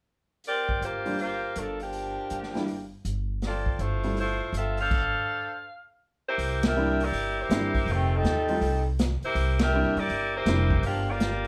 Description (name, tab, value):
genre	jazz, big band swing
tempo	162 BPM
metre	4/4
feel	swing 64% on 8ths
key	C mixolydian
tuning	A4 = 439 Hz
part	vintage drum kit	drums	0.4-11.5 s	crash cymbal, hi-hat, kick drum, ride cymbal, snare drum	-33 LUFS	equal	none
part	bright saxophone section	melody	0.5-11.5 s	Eb3 to F5	-30 LUFS	equal	none
part	upright bass	bass	0.8-11.5 s	F1 to G2	-32 LUFS	equal	none
part	warm concert grand piano	accompaniment	1.1-4.2, 6.8-10.7 s	G3 to F4	-33 LUFS	equal	none
room	moderate studio reverb, RT60 0.6 s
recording	band playing live in one room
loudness	-27 LUFS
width	mono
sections	0.4-6.4 A section; 6.4-11.5 B section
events	band accent 6.6, 9.5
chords	0.4 C7sus4; 1.9 Gm7; 2.7 N.C.; 3.4 Fmaj7; 4.9 Dm7; 5.7 N.C.; 6.4 C9; 7.9 F9; 9.4 C9; 10.8 Gm7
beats	| 0.45 0.82 1.19 1.56 | 1.93 2.31 2.68 3.05 | 3.42 3.79 4.17 4.54 | 4.91 5.28 5.65 6.02 | 6.39 6.76 7.14 7.51 | 7.88 8.25 8.62 8.99 | 9.36 9.73 10.10 10.47 | 10.84 11.21